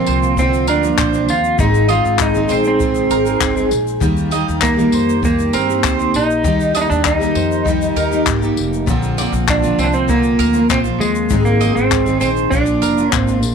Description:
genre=acoustic pop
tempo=99 BPM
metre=4/4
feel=straight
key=Eb major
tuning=A4 = 443 Hz
part: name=electric slide guitar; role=melody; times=0.0-13.4 s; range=Ab3 to F4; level=-17 LUFS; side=right 2 dB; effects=none
part: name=picked steel-string acoustic guitar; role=accompaniment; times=0.0-13.5 s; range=Ab2 to Ab4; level=-18 LUFS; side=left 1 dB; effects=double-tracked left and right
part: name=upright bass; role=bass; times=0.0-13.5 s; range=F1 to G2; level=-21 LUFS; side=equal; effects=none
part: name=mandolin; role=arpeggios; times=0.1-13.1 s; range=Bb4 to Eb5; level=-24 LUFS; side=right 12 dB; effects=none
part: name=jazz brush drum kit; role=drums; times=0.1-13.5 s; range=handclaps, kick drum, tambourine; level=-21 LUFS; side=left 4 dB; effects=none
part: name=tube shaker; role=percussion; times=0.2-13.5 s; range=none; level=-35 LUFS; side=left 20 dB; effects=none
room=studio reverb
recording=1960s-style stereo with parts hard left and right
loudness=-13 LUFS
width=side -6 dB against mid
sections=0.0-13.5 A section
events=none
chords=0.0 Bbadd9; 1.6 Ab; 4.0 Eb; 8.9 Bbadd9; 11.3 Ab; 12.5 Bb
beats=0.37 0.98 | 1.59 2.19 2.80 3.41 | 4.02 4.62 5.23 5.84 | 6.45 7.05 7.66 8.27 | 8.88 9.48 10.09 10.70 | 11.30 11.91 12.52 13.12

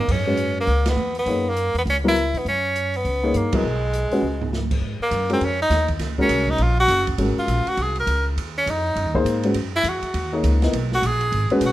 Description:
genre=modal jazz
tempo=203 BPM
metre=4/4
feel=swing 62% on 8ths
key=unclear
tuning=A4 = 444 Hz
part: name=bright tenor saxophone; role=melody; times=0.0-11.7 s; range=Ab3 to Bb4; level=-22 LUFS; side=equal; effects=none
part: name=upright bass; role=bass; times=0.0-11.7 s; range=Gb1 to Db3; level=-24 LUFS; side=equal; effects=none
part: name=open jazz drum kit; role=drums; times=0.1-11.7 s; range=crash cymbal, hi-hat, kick drum, ride cymbal, snare drum, toms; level=-30 LUFS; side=right 2 dB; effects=none
part: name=dark upright piano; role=accompaniment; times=0.3-11.7 s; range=Gb3 to Eb5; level=-22 LUFS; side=left 2 dB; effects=none
room=light reverb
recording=none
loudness=-19 LUFS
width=side -15 dB against mid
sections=0.0-4.8 A section; 4.8-11.7 B section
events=band accent 0.8, 3.5; drum fill 4.2; tenor saxophone solo 4.8-11.7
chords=0.1 Gb9sus4; 4.8 Ab9sus4; 9.6 Gb9sus4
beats=| 0.08 0.38 0.68 0.97 | 1.27 1.57 1.86 2.16 | 2.46 2.75 3.05 3.34 | 3.64 3.94 4.23 4.53 | 4.83 5.12 5.42 5.71 | 6.01 6.30 6.60 6.90 | 7.19 7.49 7.78 8.08 | 8.38 8.67 8.97 9.26 | 9.56 9.85 10.15 10.44 | 10.74 11.04 11.33 11.62

